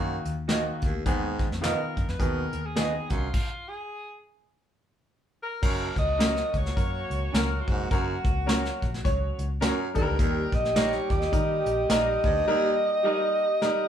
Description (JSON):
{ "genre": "uptempo 1960s-style soul", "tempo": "105 BPM", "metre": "4/4", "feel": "swing 59% on 8ths", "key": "unclear", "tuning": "A4 = 440 Hz", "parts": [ { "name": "clear baby grand piano", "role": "accompaniment", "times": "0.0-13.9 s", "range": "D#3 to C#5", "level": "-32 LUFS", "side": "left 2 dB", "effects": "none" }, { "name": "raspy baritone saxophone", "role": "riff", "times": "0.0-12.7 s", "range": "D#2 to B2", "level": "-33 LUFS", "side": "right 2 dB", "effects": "none" }, { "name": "vintage muted fingered electric bass", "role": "bass", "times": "0.0-12.4 s", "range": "E#1 to D#3", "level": "-32 LUFS", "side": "left 1 dB", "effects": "none" }, { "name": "vintage brush drum kit", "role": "drums", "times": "0.3-13.8 s", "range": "crash cymbal, hi-hat, kick drum, snare drum", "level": "-27 LUFS", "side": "equal", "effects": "none" }, { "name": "electric guitar through a small old amp", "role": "stabs", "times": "0.5-13.2 s", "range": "C#4 to D#5", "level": "-31 LUFS", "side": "right 4 dB", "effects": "none" }, { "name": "breathy alto saxophone", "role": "melody", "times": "1.6-13.9 s", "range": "E#4 to D#5", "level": "-29 LUFS", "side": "right 1 dB", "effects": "none" }, { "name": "mellow horn section", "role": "second line", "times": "5.6-13.9 s", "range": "F#3 to G4", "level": "-34 LUFS", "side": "right 2 dB", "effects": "none" } ], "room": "wet studio reverb, RT60 0.7 s", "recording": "band playing live in one room", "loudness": "-24 LUFS", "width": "side -9 dB against mid", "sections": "0.0-5.6 A section; 5.6-13.9 B section", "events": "stop 3.3-5.6; drum fill 13.6", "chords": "0.0 D#m; 1.1 G#m/D#; 3.3 N.C.; 5.6 F#; 9.9 D#", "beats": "0.49 | 1.06 1.63 2.20 2.77 | 3.34 3.91 4.48 5.05 | 5.62 6.20 6.77 7.34 | 7.91 8.48 9.05 9.62 | 10.19 10.76 11.33 11.90 | 12.47 13.04 13.61" }